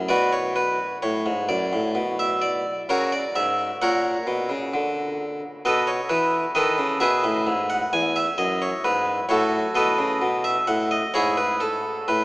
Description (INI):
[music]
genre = classical, baroque-style suite movement for harpsichord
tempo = 65 BPM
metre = 3/4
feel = rubato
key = E major from 5.7 s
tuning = A4 = 439 Hz
[part]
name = harpsichord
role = solo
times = 0.0-12.2 s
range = E2 to G#5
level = -20 LUFS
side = equal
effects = none
[sound]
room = wet cathedral reverb, RT60 5.1 s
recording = small speaker sound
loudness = -20 LUFS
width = side -20 dB against mid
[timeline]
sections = 0.0-12.2 A section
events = none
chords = 0.1 B5; 2.9 F#; 4.7 Dmaj7#5; 5.7 B7; 7.5 E/G#; 8.4 F#m; 10.2 B7; 11.1 E/G#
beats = | 0.10 1.04 1.96 | 2.88 3.83 4.74 | 5.66 6.57 7.49 | 8.40 9.30 10.23 | 11.14 12.09